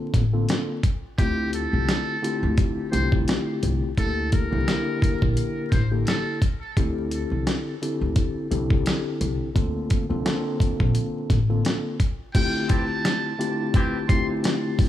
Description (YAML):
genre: hip hop, boom-bap hip-hop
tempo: 86 BPM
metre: 4/4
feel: swing 56% on 16ths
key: D minor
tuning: A4 = 439 Hz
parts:
  - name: mellow tine electric piano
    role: accompaniment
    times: 0.0-14.9 s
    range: D3 to Bb4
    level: -26 LUFS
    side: left 2 dB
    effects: medium stereo tremolo, high-pass filter, low-pass filter
  - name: upright bass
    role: bass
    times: 0.1-11.6 s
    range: A1 to D2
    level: -25 LUFS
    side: left 1 dB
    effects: none
  - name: dusty soul sampler-style drum kit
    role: drums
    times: 0.1-14.9 s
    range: crash cymbal, hi-hat, kick drum, snare drum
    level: -22 LUFS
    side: equal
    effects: none
  - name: trumpet with metal mute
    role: melody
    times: 1.2-6.4, 12.3-14.3 s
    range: G4 to C6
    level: -30 LUFS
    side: right 1 dB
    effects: high-pass filter, low-pass filter, tape echo
  - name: warm horn section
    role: stabs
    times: 12.7-14.0 s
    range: E3 to G4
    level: -34 LUFS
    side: equal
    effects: high-pass filter, low-pass filter, tape echo
room: small room ambience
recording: vinyl crackle, studio ambience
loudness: -21 LUFS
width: side -12 dB against mid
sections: 0.0-12.3 A section; 12.3-14.9 B section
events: none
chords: 0.0 Bbmaj7; 1.2 Dm11; 4.0 C13 (rootless); 6.8 C69; 9.6 Bbmaj7; 12.3 Dm11